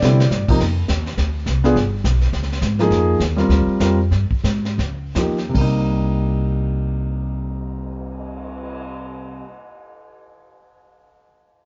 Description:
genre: jazz piano trio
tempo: 146-209 BPM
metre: 4/4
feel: swing 60% on 8ths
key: C minor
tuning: A4 = 441 Hz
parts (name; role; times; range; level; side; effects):
- warm concert grand piano; melody; 0.0-9.5 s; C3 to D5; -22 LUFS; equal; none
- upright bass; bass; 0.0-9.4 s; G1 to C3; -22 LUFS; equal; none
- vintage brush drum kit; drums; 0.0-8.7 s; brushed snare drum, crash cymbal, cymbal swell, hi-hat, kick drum, snare drum; -28 LUFS; equal; none
room: moderate studio reverb, RT60 0.9 s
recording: band playing live in one room, nothing above 7.5 kHz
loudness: -19 LUFS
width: mono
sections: 0.6-5.5 A section; 5.5-8.8 B section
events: drum fill 0.0-0.3; slowing down 2.9-5.5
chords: 0.0 C; 0.6 Ebsus2; 1.2 D7(no3); 1.8 G; 2.3 Db5; 2.9 Fm7; 3.5 Bb69/D; 4.1 N.C.; 4.8 Dbadd9; 5.5 Cm7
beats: 0.03 0.32 | 0.60 0.89 1.18 1.47 | 1.75 2.04 2.33 2.62 | 2.91 3.20 3.49 3.79 | 4.11 4.43 4.78 5.15 | 5.54 5.95 6.37 6.78 | 7.19 7.60 8.01 8.42

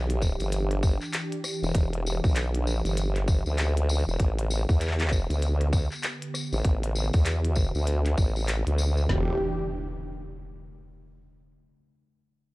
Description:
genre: glitch hop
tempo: 98 BPM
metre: 4/4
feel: swing 61% on 16ths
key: E minor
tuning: A4 = 437 Hz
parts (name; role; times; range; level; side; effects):
- warm analog pad; sustained chords; 0.0-9.4 s; D3 to G4; -35 LUFS; right 1 dB; chorus, sidechain pumping
- formant-sweep wobble bass; bass; 0.0-9.4 s; E1 to E2; -25 LUFS; equal; chorus, tube saturation
- glitchy drum kit; drums; 0.1-8.8 s; handclaps, hi-hat, rim click; -33 LUFS; left 1 dB; small room ambience
- drum and bass drum kit; drums; 0.2-9.3 s; kick drum, snare drum, toms; -24 LUFS; equal; small room ambience
- tambourine; percussion; 0.2-9.1 s; none; -37 LUFS; left 3 dB; none
- impact; sound effects; 9.1-11.5 s; none; -36 LUFS; equal; none
room: little or no reverb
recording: dry, gritty hardware recording, cassette tape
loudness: -24 LUFS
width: side -21 dB against mid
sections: 0.0-9.1 A section; 9.1-11.5 B section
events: none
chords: 0.0 Em7; 4.2 A9sus4; 9.1 Em7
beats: 0.52 1.14 | 1.75 2.36 2.97 3.58 | 4.20 4.81 5.42 6.03 | 6.65 7.26 7.87 8.48 | 9.10 9.71 10.32 10.93

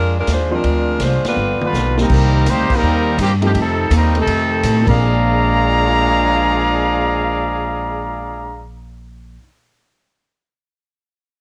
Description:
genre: jazz, big band swing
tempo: 165 BPM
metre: 4/4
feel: swing 66% on 8ths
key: Bb mixolydian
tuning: A4 = 442 Hz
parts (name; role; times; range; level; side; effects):
- warm saxophone section; melody; 0.0-1.7 s; G3 to C5; -22 LUFS; equal; cassette tape
- upright bass; bass; 0.0-9.4 s; G1 to A2; -21 LUFS; equal; none
- swinging big-band drum kit; drums; 0.3-4.9 s; crash cymbal, hi-hat, kick drum, ride cymbal, snare drum, toms; -26 LUFS; equal; none
- warm baby grand piano; accompaniment; 0.5-9.4 s; Bb2 to D5; -25 LUFS; equal; cassette tape
- mellow trombone section; second line; 1.3-8.7 s; Bb2 to D4; -24 LUFS; equal; cassette tape
- clear trumpet section; melody; 1.6-8.7 s; G3 to Bb5; -20 LUFS; equal; cassette tape
room: light reverb, small room reverb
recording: home recording on cassette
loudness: -16 LUFS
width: mono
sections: 0.0-2.1 A section; 2.1-5.0 B section; 5.0-7.9 C section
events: band accent 1.2, 2.6; drum fill 1.4-2.1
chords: 0.0 Bb9; 0.6 Dm7b5; 1.4 G7; 2.1 Cm7; 3.5 F7; 4.8 Bb9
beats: 0.27 | 0.64 1.00 1.36 1.73 | 2.09 2.45 2.82 3.18 | 3.54 3.90 4.27 4.63 | 4.99 5.35 5.72 6.08 | 6.44 6.81 7.17 7.53

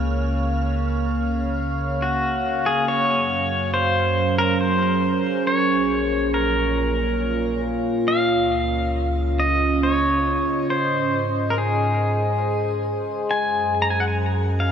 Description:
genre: ambient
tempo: 69 BPM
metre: 3/4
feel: straight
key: unclear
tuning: A4 = 441 Hz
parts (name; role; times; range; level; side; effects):
- evolving wavetable pad; sustained chords; 0.0-14.7 s; Bb2 to F5; -23 LUFS; right 1 dB; chorus, built-in reverb, shimmer reverb
- round analog bass; bass; 0.0-14.7 s; Bb1 to Ab2; -26 LUFS; equal; none
- wind-like tuned noise texture; texture; 0.0-2.9 s; F6; -39 LUFS; right 4 dB; built-in reverb, shimmer reverb
- pedal steel guitar; melody; 2.0-14.7 s; Gb4 to Bb5; -22 LUFS; left 1 dB; shimmer reverb, ping-pong delay
room: wet cathedral reverb, RT60 5.2 s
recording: none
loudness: -19 LUFS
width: side -8 dB against mid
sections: 0.0-2.9 A section; 2.9-14.7 B section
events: filter sweep on ambient pad 2.9-14.7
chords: 0.0 Db6; 2.9 Gbadd9; 5.5 Bbm; 8.1 Dbadd9; 10.7 Ab; 13.3 Gbadd9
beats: | 0.25 1.12 1.99 | 2.86 3.73 4.60 | 5.47 6.34 7.21 | 8.08 8.95 9.82 | 10.69 11.56 12.43 | 13.30 14.17

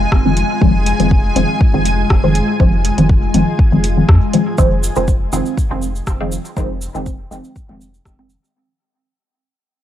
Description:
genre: dub techno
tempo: 121 BPM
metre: 4/4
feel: swing 54% on 16ths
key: F minor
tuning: A4 = 440 Hz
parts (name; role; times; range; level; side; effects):
- granular cloud pad; sustained chords; 0.0-4.6 s; Ab3 to Ab5; -20 LUFS; left 2 dB; built-in reverb, sidechain pumping
- round analog bass; bass; 0.0-8.4 s; F1 to F2; -18 LUFS; equal; transformer saturation, sidechain pumping
- deep house drum kit; drums; 0.1-8.2 s; hi-hat, rim click; -23 LUFS; equal; dub echo
- electronic kick drum; drums; 0.1-8.2 s; none; -14 LUFS; equal; none
- filtered dub chord stab; stabs; 0.3-8.3 s; Eb3 to C4; -17 LUFS; equal; phaser, sidechain pumping, dub echo
- tube shaker; percussion; 4.6-8.5 s; none; -29 LUFS; right 3 dB; none
room: digital ambience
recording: dry, gritty hardware recording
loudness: -12 LUFS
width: side -12 dB against mid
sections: 0.0-4.6 A section; 4.6-8.6 B section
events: fade-out 4.6-8.6; filter sweep on synth stab 4.6-8.6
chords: 0.0 Fm7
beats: 0.12 | 0.62 1.11 1.61 2.10 | 2.60 3.10 3.59 4.09 | 4.58 5.08 5.58 6.07 | 6.57 7.06 7.56 8.05

